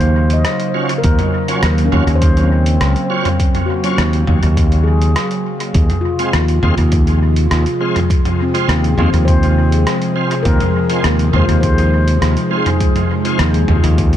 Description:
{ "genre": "ambient dub", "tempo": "102 BPM", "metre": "4/4", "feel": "straight", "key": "unclear", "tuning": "A4 = 443 Hz", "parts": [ { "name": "airy breathy pad", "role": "sustained chords", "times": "0.0-14.2 s", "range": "C3 to F5", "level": "-20 LUFS", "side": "right 1 dB", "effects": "chorus" }, { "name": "handpan", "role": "arpeggios", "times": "0.0-14.2 s", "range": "C4 to Eb5", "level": "-22 LUFS", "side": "left 4 dB", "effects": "dub echo" }, { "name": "modern bright fingered electric bass", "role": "bass", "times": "0.0-14.2 s", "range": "Db2 to Eb2", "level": "-13 LUFS", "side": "equal", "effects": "none" }, { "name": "lo-fi sampler-style drum kit", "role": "drums", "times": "0.0-14.2 s", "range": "hi-hat, rim click, toms", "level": "-21 LUFS", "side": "equal", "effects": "dub echo" }, { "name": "bright tonewheel organ", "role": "stabs", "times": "0.7-13.4 s", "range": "Gb3 to F4", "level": "-23 LUFS", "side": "right 3 dB", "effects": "overdrive, chorus vibrato, slow rotary speaker, dub echo" }, { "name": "electronic kick drum", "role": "drums", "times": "1.0-14.1 s", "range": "none", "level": "-16 LUFS", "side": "equal", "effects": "none" } ], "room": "light reverb", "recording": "echo-heavy mix", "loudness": "-12 LUFS", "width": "side -11 dB against mid", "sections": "0.0-14.2 A section", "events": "none", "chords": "0.0 Ebm9; 5.7 Fm/Eb" }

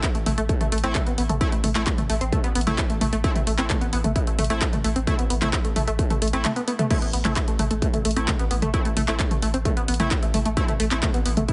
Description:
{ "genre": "driving peak-time techno", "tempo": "131 BPM", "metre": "4/4", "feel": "straight", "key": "A minor", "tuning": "A4 = 440 Hz", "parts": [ { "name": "tight sequenced synth", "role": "riff", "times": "0.0-11.5 s", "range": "A3 to E4", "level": "-29 LUFS", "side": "equal", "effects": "chorus, tube saturation, sidechain pumping, tape echo" }, { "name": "saturated sub bass", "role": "bass", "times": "0.0-11.5 s", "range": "A1", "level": "-31 LUFS", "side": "equal", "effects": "overdrive, sidechain pumping, low-pass filter" }, { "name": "electronic kick drum", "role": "drums", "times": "0.0-11.5 s", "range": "none", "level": "-27 LUFS", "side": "equal", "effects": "distortion" }, { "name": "punchy analog drum machine", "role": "drums", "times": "0.0-11.5 s", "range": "crash cymbal, handclaps, hi-hat, toms", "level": "-30 LUFS", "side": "equal", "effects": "overdrive, sidechain pumping on hats, sidechain pumping on toms, sidechain pumping on cymbals" }, { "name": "sync-sweep polysynth", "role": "stabs", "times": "0.8-11.0 s", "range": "A3 to E4", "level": "-34 LUFS", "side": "equal", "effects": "chorus, sidechain pumping, tape echo" } ], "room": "light reverb, digital ambience", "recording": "heavily compressed radio sound, multiband compression, nothing above 10.6 kHz", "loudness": "-23 LUFS", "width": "mono", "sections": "0.0-11.5 A section", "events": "none", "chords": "0.0 Am" }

